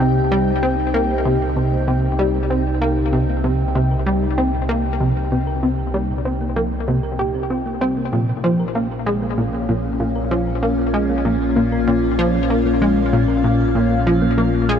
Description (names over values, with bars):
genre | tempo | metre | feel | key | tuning
ambient, sequencer-driven space music | 96 BPM | 4/4 | straight | unclear | A4 = 439 Hz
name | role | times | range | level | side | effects
evolving wavetable pad | sustained chords | 0.0-14.8 s | Bb2 to G5 | -21 LUFS | left 1 dB | chorus, built-in reverb, phaser
plucky analog bass | riff | 0.0-14.8 s | Bb2 to G4 | -20 LUFS | equal | lush chorus, ping-pong delay
warm sub bass | bass | 0.0-14.8 s | Bb1 to C2 | -24 LUFS | equal | none
thumb-piano-like synth pluck | arpeggios | 0.2-14.8 s | Bb2 to Bb4 | -28 LUFS | moving between left 6 dB and right 3 dB | chorus, auto-pan, vintage 12-bit sampler grit, ping-pong delay
room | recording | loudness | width
moderate huge ambient reverb, RT60 8.2 s | none | -16 LUFS | side -8 dB against mid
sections
0.0-14.8 A section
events
fade-in on synth arpeggio sound 0.0-14.8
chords
0.0 Cm; 8.1 Bbm